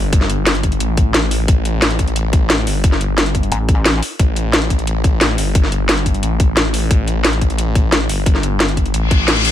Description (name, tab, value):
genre	dark technical drum and bass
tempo	177 BPM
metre	4/4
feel	straight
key	unclear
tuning	A4 = 440 Hz
part	snarling distorted saw bass	bass	0.0-9.5 s	G1 to A1	-18 LUFS	left 1 dB	overdrive
part	impact and reverse cymbal	sound effects	0.0-0.1, 9.0-9.5 s	none	-20 LUFS	left 5 dB	none
part	drum and bass drum kit	drums	0.1-9.5 s	hi-hat, snare drum	-17 LUFS	equal	none
part	electronic kick drum	drums	0.1-9.2 s	none	-14 LUFS	left 1 dB	none
part	pulsing pluck wobble bass	bass	3.5-4.0 s	A1	-17 LUFS	left 1 dB	distortion, chorus
room	little or no reverb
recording	none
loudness	-13 LUFS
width	side -11 dB against mid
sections	0.0-9.5 A section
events	reverse cymbal 9.0-9.5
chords	0.0 A5